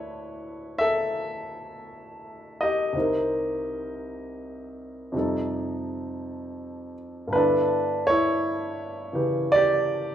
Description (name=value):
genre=jazz ballad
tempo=55 BPM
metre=4/4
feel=swing 67% on 8ths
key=unclear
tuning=A4 = 441 Hz
part: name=warm grand piano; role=solo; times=0.0-10.1 s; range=C2 to F#5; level=-24 LUFS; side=equal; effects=none
room=moderate large studio reverb, RT60 1.1 s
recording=band playing live in one room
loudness=-23 LUFS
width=side -10 dB against mid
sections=0.0-10.1 A section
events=none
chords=0.0 Dmaj9; 3.0 Cm7; 5.1 F9; 7.3 G69